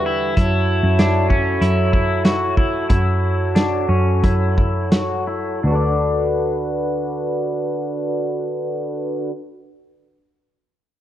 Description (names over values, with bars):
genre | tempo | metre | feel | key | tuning
dream pop | 82-97 BPM | 4/4 | straight | D major | A4 = 440 Hz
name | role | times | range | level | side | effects
pedal harmonium | sustained chords | 0.0-9.3 s | D3 to C#5 | -22 LUFS | right 1 dB | stereo widening, low-pass filter
electric guitar at the edge of break-up | arpeggios | 0.0-10.1 s | C#4 to D5 | -23 LUFS | left 3 dB | lush chorus, low-pass filter, tape echo
vintage muted picked electric bass | bass | 0.0-10.0 s | D2 to F#2 | -20 LUFS | equal | none
vintage drum kit | drums | 0.4-5.1 s | hi-hat, kick drum, snare drum | -17 LUFS | equal | none
room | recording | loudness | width
light reverb, small room ambience | worn, warbling old tape, cassette tape, warbly pitch drift | -17 LUFS | side -12 dB against mid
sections
0.0-5.6 A section; 5.6-8.6 B section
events
filter sweep 0.0-5.6; slowing down 0.4-5.6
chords
0.4 F#m7; 5.6 D6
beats
| 0.37 0.99 1.62 2.25 | 2.90 3.56 4.23 4.92 | 5.64 6.37 7.09 7.82